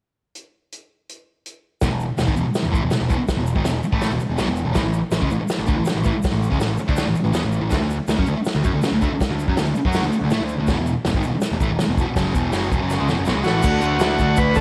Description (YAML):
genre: garage rock duo or trio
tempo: 162 BPM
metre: 4/4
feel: straight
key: E mixolydian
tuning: A4 = 440 Hz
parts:
  - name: vintage drum kit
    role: drums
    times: 0.4-14.6 s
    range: crash cymbal, hi-hat, kick drum, snare drum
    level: -26 LUFS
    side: equal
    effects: none
  - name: thick fuzz guitar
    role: riff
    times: 1.8-14.6 s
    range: E2 to F#4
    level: -24 LUFS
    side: equal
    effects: distortion
  - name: growling picked electric bass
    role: bass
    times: 1.8-14.6 s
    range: E1 to A2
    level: -26 LUFS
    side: equal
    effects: overdrive
  - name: egg shaker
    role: percussion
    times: 1.8-14.6 s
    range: none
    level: -45 LUFS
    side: equal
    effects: none
  - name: overdriven combo organ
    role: melody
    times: 13.4-14.6 s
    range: F#4 to B4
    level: -23 LUFS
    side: equal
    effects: none
room: moderate echo chamber reverb, RT60 1.6 s, studio ambience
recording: none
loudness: -21 LUFS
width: mono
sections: 0.3-1.8 A section; 1.8-13.6 B section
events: drum fill 12.9-13.6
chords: 0.3 N.C.; 1.8 E5; 4.8 A5; 7.7 D5; 10.7 E5; 13.6 D